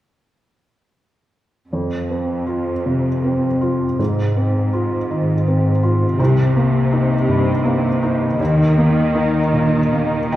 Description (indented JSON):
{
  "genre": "cinematic, emotional film score for orchestra",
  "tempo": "54 BPM (dotted quarters)",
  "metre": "6/8",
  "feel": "rubato",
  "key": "F minor",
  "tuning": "A4 = 440 Hz",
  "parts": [
    { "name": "felt-muted upright piano", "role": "accompaniment", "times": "1.7-10.4 s", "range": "C2 to G5", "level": "-16 LUFS", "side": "equal", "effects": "none" },
    { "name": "rich symphonic cello section", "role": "bass", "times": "1.7-10.4 s", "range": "F2 to Eb3", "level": "-21 LUFS", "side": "equal", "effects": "none" }
  ],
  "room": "wet recital hall reverb, RT60 1.4 s",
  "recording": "heard from further back in the room",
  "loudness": "-15 LUFS",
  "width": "side -14 dB against mid",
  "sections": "1.7-10.4 A section",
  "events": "none",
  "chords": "1.7 F5; 4.0 Ab6; 6.2 Cm7; 8.4 Eb5"
}